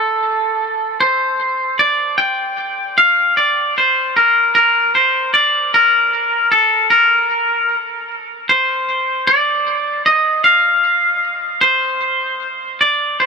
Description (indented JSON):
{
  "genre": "rock",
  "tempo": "51 BPM (dotted quarters)",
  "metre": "6/8",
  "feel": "straight",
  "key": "unclear",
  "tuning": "A4 = 439 Hz",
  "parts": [
    { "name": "twangy electric guitar", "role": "solo", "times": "0.0-13.3 s", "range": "A4 to G5", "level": "-12 LUFS", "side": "equal", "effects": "digital delay" }
  ],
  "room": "moderate huge ambient reverb, RT60 7.5 s",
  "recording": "none",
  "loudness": "-12 LUFS",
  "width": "side -5 dB against mid",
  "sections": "0.0-12.8 A section",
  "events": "none",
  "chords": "none"
}